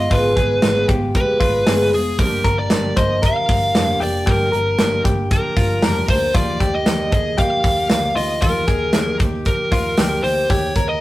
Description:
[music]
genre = jangly indie pop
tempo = 116 BPM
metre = 4/4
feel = straight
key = Eb major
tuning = A4 = 440 Hz
[part]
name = fuzz lead guitar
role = melody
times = 0.0-11.0 s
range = Ab4 to F5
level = -20 LUFS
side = equal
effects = distortion
[part]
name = fingerpicked steel-string acoustic guitar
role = accompaniment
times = 0.0-11.0 s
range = G2 to Ab4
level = -25 LUFS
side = right 1 dB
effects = none
[part]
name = direct-recorded clean electric guitar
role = arpeggios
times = 0.0-11.0 s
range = F4 to C5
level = -24 LUFS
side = left 2 dB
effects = none
[part]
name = vintage muted picked electric bass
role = bass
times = 0.0-11.0 s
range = F1 to Eb2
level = -25 LUFS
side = equal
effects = none
[part]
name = modern studio drum kit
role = drums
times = 0.1-10.9 s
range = hi-hat, kick drum, snare drum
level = -19 LUFS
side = equal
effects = none
[part]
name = tambourine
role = percussion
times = 6.4-10.9 s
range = none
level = -42 LUFS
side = right 3 dB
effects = none
[sound]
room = moderate stone room reverb, RT60 1.0 s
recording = rough rehearsal-room recording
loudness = -15 LUFS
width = side -16 dB against mid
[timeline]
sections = 0.0-11.0 A section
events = none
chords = 0.0 Abm6; 2.2 Gm7; 6.3 Ebadd9; 10.5 Eb7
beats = | 0.11 0.63 1.15 1.67 | 2.19 2.71 3.23 3.75 | 4.27 4.79 5.31 5.83 | 6.34 6.86 7.38 7.90 | 8.42 8.94 9.46 9.98 | 10.50

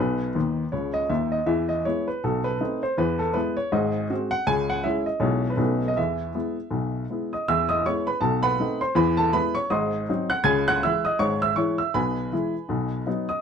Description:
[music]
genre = jazz, stride piano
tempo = 160 BPM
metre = 4/4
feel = swing 59% on 8ths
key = E major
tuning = A4 = 443 Hz
[part]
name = clear upright piano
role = solo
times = 0.0-13.4 s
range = G#1 to G#6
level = -22 LUFS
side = equal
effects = none
[sound]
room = moderate small room reverb, RT60 0.5 s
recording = dark, warm production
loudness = -22 LUFS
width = side -7 dB against mid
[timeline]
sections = 0.0-7.5 A section; 7.5-13.4 A section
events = upright piano fill 0.3-1.5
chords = 0.0 B; 0.7 C#madd9; 1.5 E; 2.2 B7b9; 3.0 E; 3.7 G#7; 4.5 C#m; 5.2 E/B; 5.6 B9; 6.0 E; 8.2 B7b9; 9.0 E; 9.7 G#7; 10.5 C#m; 11.9 E/B; 12.7 B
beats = 0.35 0.72 1.10 | 1.48 1.85 2.23 2.60 | 2.98 3.35 3.73 4.10 | 4.47 4.85 5.22 5.60 | 5.97 6.35 6.72 7.09 | 7.47 7.84 8.22 8.59 | 8.96 9.34 9.71 10.08 | 10.46 10.83 11.20 11.57 | 11.95 12.32 12.69 13.07

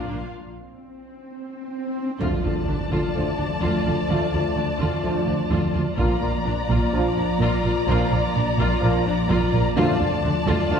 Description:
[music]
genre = cinematic, hybrid orchestral and electronic film score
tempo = 127 BPM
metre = 4/4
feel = straight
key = D minor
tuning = A4 = 443 Hz
[part]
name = warm symphonic violin section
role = second line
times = 0.0-10.8 s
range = F4 to F5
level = -30 LUFS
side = left 3 dB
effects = none
[part]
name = clear symphonic viola section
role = accompaniment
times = 0.0-10.8 s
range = Bb3 to F4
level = -29 LUFS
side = equal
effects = none
[part]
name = hollow soft pad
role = sustained chords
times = 0.0-10.8 s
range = F3 to D5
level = -28 LUFS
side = left 1 dB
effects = ensemble chorus
[part]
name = warm studio double bass section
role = bass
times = 0.1-10.8 s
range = Bb1 to D2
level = -25 LUFS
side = right 1 dB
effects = none
[part]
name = warm symphonic cello section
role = bass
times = 0.1-10.8 s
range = Bb2 to D3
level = -27 LUFS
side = right 2 dB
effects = none
[part]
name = swell and impact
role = sound effects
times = 0.8-4.1 s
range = none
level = -30 LUFS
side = equal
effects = none
[part]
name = warm symphonic violin section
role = melody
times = 2.2-10.8 s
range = A5 to Bb5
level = -30 LUFS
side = left 3 dB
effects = none
[part]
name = bright trombone section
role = sustained chords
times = 2.2-10.8 s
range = F3 to Bb3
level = -31 LUFS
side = right 2 dB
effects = none
[part]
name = warm French horn section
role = sustained chords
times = 2.2-10.8 s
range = D4 to F4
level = -31 LUFS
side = right 1 dB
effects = none
[sound]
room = wet scoring stage reverb, RT60 1.5 s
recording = heard from further back in the room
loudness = -20 LUFS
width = side -7 dB against mid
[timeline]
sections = 0.0-2.2 A section; 2.2-10.8 A section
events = break 0.3-2.2; swell 0.8-2.2; impact 2.2-4.1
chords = 0.0 Bb; 2.2 Dm; 6.0 Bb; 9.8 Dm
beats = | 0.32 0.79 1.27 1.74 | 2.21 2.68 3.15 3.63 | 4.10 4.57 5.04 5.52 | 5.99 6.46 6.93 7.41 | 7.88 8.35 8.82 9.30 | 9.77 10.24 10.71

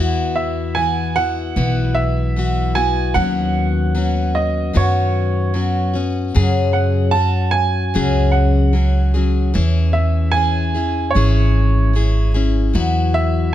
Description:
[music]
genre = acoustic folk duo or small band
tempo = 75 BPM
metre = 4/4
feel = straight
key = E major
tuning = A4 = 440 Hz
[part]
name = picked plugged-in steel-string acoustic guitar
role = accompaniment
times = 0.0-13.5 s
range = F#2 to G#4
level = -20 LUFS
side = left 5 dB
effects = none
[part]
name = upright bass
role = bass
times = 0.0-13.5 s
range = G#1 to F#2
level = -17 LUFS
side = right 1 dB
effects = none
[part]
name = clear upright piano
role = melody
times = 0.4-13.5 s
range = C#5 to A5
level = -22 LUFS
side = right 5 dB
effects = none
[sound]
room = little or no reverb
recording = close, detailed microphones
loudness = -15 LUFS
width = side -12 dB against mid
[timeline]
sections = 0.0-13.5 A section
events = none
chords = 0.0 Esus2; 3.2 Badd9/D#; 6.4 F#sus2; 9.6 C#m/E; 12.7 Esus2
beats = 0.76 1.56 2.36 | 3.16 3.96 4.76 5.56 | 6.36 7.16 7.95 8.75 | 9.55 10.35 11.15 11.95 | 12.74 13.54

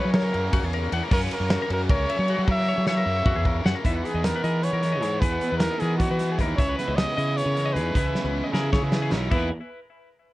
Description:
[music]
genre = math rock and midwest emo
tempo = 307 BPM (eighths)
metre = 7/8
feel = straight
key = E lydian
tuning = A4 = 444 Hz
[part]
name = clear trumpet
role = melody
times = 0.0-9.5 s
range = E4 to E5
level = -28 LUFS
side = equal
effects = none
[part]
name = twelve-string electric guitar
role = arpeggios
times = 0.0-9.5 s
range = E4 to F#5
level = -32 LUFS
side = left 6 dB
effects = tape echo
[part]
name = biting overdriven guitar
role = riff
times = 0.0-9.5 s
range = F#2 to G#4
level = -34 LUFS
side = right 1 dB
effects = none
[part]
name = fuzz fingered electric bass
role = bass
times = 0.1-9.5 s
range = B1 to F#3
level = -26 LUFS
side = equal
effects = overdrive
[part]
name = loose indie drum kit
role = drums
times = 0.1-9.4 s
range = crash cymbal, hi-hat, kick drum, ride cymbal, snare drum, toms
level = -25 LUFS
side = equal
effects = none
[part]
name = clean electric guitar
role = accompaniment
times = 3.9-9.5 s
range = E2 to G#4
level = -32 LUFS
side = right 4 dB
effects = none
[sound]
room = little or no reverb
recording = worn, warbling old tape, cassette tape, warbly pitch drift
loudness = -21 LUFS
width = side -17 dB against mid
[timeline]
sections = 0.0-3.8 A section; 3.8-9.3 B section; 9.3-10.3 C section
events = drum fill 2.5-3.8, 8.2-9.3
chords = 0.0 F#7; 3.8 Emaj7#11; 6.6 C#m9; 9.3 Emaj7#11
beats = 0.14 0.34 0.53 0.72 0.92 | 1.11 1.31 1.50 1.70 1.90 2.09 2.29 | 2.48 2.67 2.87 3.06 3.26 3.46 3.65 | 3.85 4.04 4.24 4.43 4.63 4.83 5.02 | 5.22 5.41 5.61 5.80 6.00 6.20 6.39 | 6.59 6.78 6.98 7.17 7.37 7.57 7.76 | 7.96 8.15 8.35 8.54 8.74 8.93 9.13 | 9.32 9.52

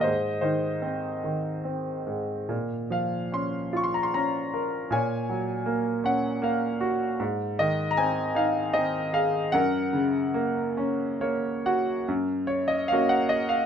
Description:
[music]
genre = classical, lyrical solo piano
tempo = 66-80 BPM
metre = 3/4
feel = rubato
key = Gb lydian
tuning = A4 = 440 Hz
[part]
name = bright concert grand piano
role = solo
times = 0.0-13.7 s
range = Gb2 to Db6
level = -24 LUFS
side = equal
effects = none
[sound]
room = light reverb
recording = close, detailed microphones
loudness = -24 LUFS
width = side -8 dB against mid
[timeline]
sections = 0.0-12.1 A section; 12.1-13.7 B section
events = grand piano fill 10.8-12.1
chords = 0.0 Ab; 2.5 Bbm; 4.9 Gb/Bb; 7.2 Ab; 9.5 Gb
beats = | 0.04 0.83 1.65 | 2.49 3.33 4.14 | 4.92 5.67 6.42 | 7.20 7.97 8.74 | 9.53 10.34 11.21 | 12.08 12.91

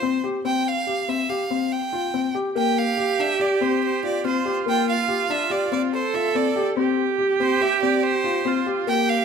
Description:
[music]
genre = contemporary instrumental, chamber music in an uneven meter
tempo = 142 BPM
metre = 5/4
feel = straight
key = Bb lydian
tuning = A4 = 440 Hz
[part]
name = bright violin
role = melody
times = 0.0-9.2 s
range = C5 to G5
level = -25 LUFS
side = right 4 dB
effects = none
[part]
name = felt-muted upright piano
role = arpeggios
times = 0.0-9.1 s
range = Bb3 to G4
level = -24 LUFS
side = left 6 dB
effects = none
[part]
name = clear viola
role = second line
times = 2.6-9.2 s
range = F4 to A4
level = -24 LUFS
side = right 7 dB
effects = none
[sound]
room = moderate recital hall reverb, RT60 1.7 s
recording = none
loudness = -20 LUFS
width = side -6 dB against mid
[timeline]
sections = 0.0-9.2 A section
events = none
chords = 0.0 Fsus2; 2.6 Bb69; 6.8 Fsus2 (rootless)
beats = 0.03 | 0.45 0.87 1.29 1.71 2.14 | 2.56 2.98 3.40 3.82 4.24 | 4.67 5.09 5.51 5.93 6.35 | 6.77 7.19 7.61 8.04 8.46 | 8.88

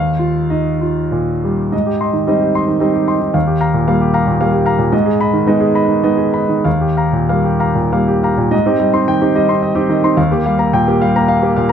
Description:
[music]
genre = neoclassical minimalist piano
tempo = 90-117 BPM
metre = 3/4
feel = rubato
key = unclear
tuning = A4 = 442 Hz
[part]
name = clear concert grand piano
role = solo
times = 0.0-11.7 s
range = Eb2 to C6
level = -12 LUFS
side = equal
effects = none
[sound]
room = light reverb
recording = close, detailed microphones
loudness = -12 LUFS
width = side -8 dB against mid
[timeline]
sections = 0.0-1.7 A section; 1.7-8.5 B section; 8.5-11.7 C section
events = none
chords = 0.0 Ebadd9; 1.7 Abmaj7; 3.3 Ebadd9; 4.9 Abm; 6.7 Ebadd9; 8.5 Abmaj7 (rootless); 10.2 Ebadd9 (rootless)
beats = 0.51 1.12 | 1.73 2.28 2.81 | 3.35 3.88 4.41 | 4.93 5.46 6.03 | 6.65 7.31 7.93 | 8.53 9.09 9.63 | 10.17 10.73 11.29

